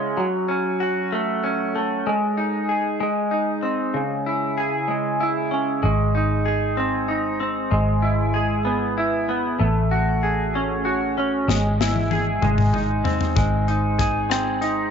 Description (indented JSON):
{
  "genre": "six-eight pop ballad",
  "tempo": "64 BPM (dotted quarters)",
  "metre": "6/8",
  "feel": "straight",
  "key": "unclear",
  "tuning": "A4 = 440 Hz",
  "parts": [
    { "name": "direct-recorded clean electric guitar", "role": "accompaniment", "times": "0.0-14.9 s", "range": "C#3 to G#4", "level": "-21 LUFS", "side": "right 1 dB", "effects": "double-tracked left and right" },
    { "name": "vintage muted fingered electric bass", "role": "bass", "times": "5.8-14.9 s", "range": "G#1 to A1", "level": "-23 LUFS", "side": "equal", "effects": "none" },
    { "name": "modern studio drum kit", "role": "drums", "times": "11.5-14.8 s", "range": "hi-hat, kick drum, rim click, snare drum, toms", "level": "-24 LUFS", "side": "left 5 dB", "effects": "none" }
  ],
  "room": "moderate spring reverb, RT60 2.6 s",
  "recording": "1960s-style stereo, nothing above 7.7 kHz",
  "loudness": "-19 LUFS",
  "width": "side -7 dB against mid",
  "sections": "0.0-14.9 A section",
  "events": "drum fill 11.5-13.4",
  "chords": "0.2 F#m; 2.1 G#5; 3.0 G#; 4.0 C#m; 5.8 G#; 7.7 E/G#; 9.6 F#madd9/A; 11.5 E/G#; 12.4 G#"
}